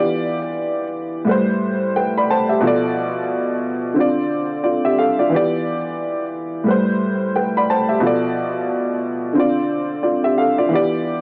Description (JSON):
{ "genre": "hip hop", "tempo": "89 BPM", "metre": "4/4", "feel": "swing 61% on 16ths", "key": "A minor", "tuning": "A4 = 440 Hz", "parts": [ { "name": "warm upright piano", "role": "solo", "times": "0.0-11.2 s", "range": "A2 to B5", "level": "-19 LUFS", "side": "equal", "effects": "cassette tape, high-pass filter, low-pass filter, tape echo" } ], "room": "moderate studio reverb, RT60 0.6 s", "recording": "dark, warm production", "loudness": "-19 LUFS", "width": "mono", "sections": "0.0-11.2 A section", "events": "none", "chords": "0.0 Em7; 1.3 Am9; 2.6 Bm7b5; 4.0 Dm7; 5.3 Em7; 6.7 Am9; 8.0 Bm7b5; 9.4 Dm7", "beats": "0.61 | 1.28 1.96 2.63 3.31 | 3.98 4.66 5.33 6.00 | 6.68 7.35 8.03 8.70 | 9.38 10.05 10.72" }